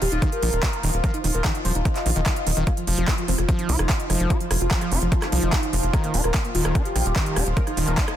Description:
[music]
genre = psychedelic trance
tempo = 147 BPM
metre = 4/4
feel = straight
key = unclear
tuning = A4 = 440 Hz
[part]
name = wide unison lead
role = melody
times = 0.0-8.1 s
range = F3 to Eb5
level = -29 LUFS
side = equal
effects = phaser, vintage 12-bit sampler grit, sidechain pumping, tape echo
[part]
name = bubbling stepped-filter texture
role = sustained chords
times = 0.0-8.2 s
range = F3 to F4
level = -31 LUFS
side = equal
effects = chorus, built-in reverb, sidechain pumping
[part]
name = overdriven acid bass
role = riff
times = 0.0-8.1 s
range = Eb3 to F4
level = -29 LUFS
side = right 1 dB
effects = distortion, auto-pan, sidechain pumping, tape echo
[part]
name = tight sequencer bass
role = bass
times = 0.0-7.9 s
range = Eb1 to C2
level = -23 LUFS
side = equal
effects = none
[part]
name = big-room dance drum kit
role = drums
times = 0.0-8.2 s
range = handclaps, hi-hat, rim click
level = -28 LUFS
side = right 1 dB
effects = none
[part]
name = electronic kick drum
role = drums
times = 0.2-8.1 s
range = none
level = -22 LUFS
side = equal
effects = none
[part]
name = swell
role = sound effects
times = 2.1-2.7 s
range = none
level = -34 LUFS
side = left 4 dB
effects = none
[sound]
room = little or no reverb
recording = dense, heavily limited modern master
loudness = -20 LUFS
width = side -11 dB against mid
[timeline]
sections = 0.0-8.2 A section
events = swell 2.1-2.7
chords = 0.0 Eb5; 2.7 F5; 5.9 Eb5

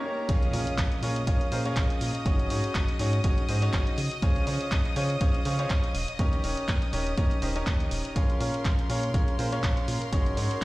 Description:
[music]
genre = piano house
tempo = 122 BPM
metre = 4/4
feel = swing 55% on 16ths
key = Bb minor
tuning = A4 = 441 Hz
[part]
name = bright studio violin section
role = sustained chords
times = 0.0-10.6 s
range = Bb4 to Eb6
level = -38 LUFS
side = left 1 dB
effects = sidechain pumping
[part]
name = clear concert grand piano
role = riff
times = 0.0-10.6 s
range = Db4 to Db5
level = -31 LUFS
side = equal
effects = sidechain pumping, tape echo
[part]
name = swell and impact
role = sound effects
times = 0.0-2.3 s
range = none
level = -37 LUFS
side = equal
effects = none
[part]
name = organ-like FM bass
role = bass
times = 0.3-10.6 s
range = Eb1 to Db3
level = -30 LUFS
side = equal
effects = sidechain pumping
[part]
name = electronic kick drum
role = drums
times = 0.3-10.6 s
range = none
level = -27 LUFS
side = equal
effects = none
[part]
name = punchy analog drum machine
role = drums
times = 0.3-10.6 s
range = handclaps, hi-hat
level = -36 LUFS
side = right 1 dB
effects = none
[sound]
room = digital ambience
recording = played on a big sound system in a bare room, stone room reverb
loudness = -24 LUFS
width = side -19 dB against mid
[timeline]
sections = 0.3-10.6 A section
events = swell 0.0; drop 0.3-10.6; impact 0.3-2.3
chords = 0.3 Bbm7; 2.3 Ab7sus4; 4.0 Dbmaj7; 5.9 Eb7; 8.2 Bbm7; 10.1 Ab7sus4

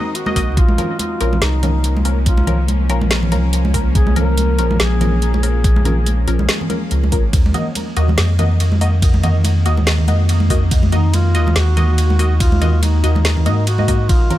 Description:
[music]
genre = deep dubstep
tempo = 142 BPM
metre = 4/4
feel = swing 56% on 16ths, half-time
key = unclear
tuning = A4 = 440 Hz
[part]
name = dark duduk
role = melody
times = 0.0-6.2, 10.9-14.4 s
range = Eb4 to Bb4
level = -25 LUFS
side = equal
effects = dub echo
[part]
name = bowed-like drone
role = sustained chords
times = 0.0-14.4 s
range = Eb3 to Gb4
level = -25 LUFS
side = left 1 dB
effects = built-in reverb
[part]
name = filtered dub chord stab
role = stabs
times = 0.0-14.4 s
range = F3 to Eb5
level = -24 LUFS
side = left 2 dB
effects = phaser, dub echo
[part]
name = garage drum kit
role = drums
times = 0.1-14.4 s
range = hi-hat, ride cymbal, snare drum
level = -24 LUFS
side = equal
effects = none
[part]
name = congas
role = percussion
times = 0.3-14.4 s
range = none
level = -23 LUFS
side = right 2 dB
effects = none
[part]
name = soft dub sub bass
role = bass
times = 0.4-14.3 s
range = Ab1 to Ab2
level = -15 LUFS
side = equal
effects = none
[part]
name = electronic kick drum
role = drums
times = 0.4-14.2 s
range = none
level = -15 LUFS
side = equal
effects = none
[sound]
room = little or no reverb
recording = vinyl crackle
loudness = -13 LUFS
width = side -14 dB against mid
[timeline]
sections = 0.0-14.1 A section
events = drop 0.0-14.1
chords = 0.0 Ebm; 0.6 Bbm; 7.3 Ebm

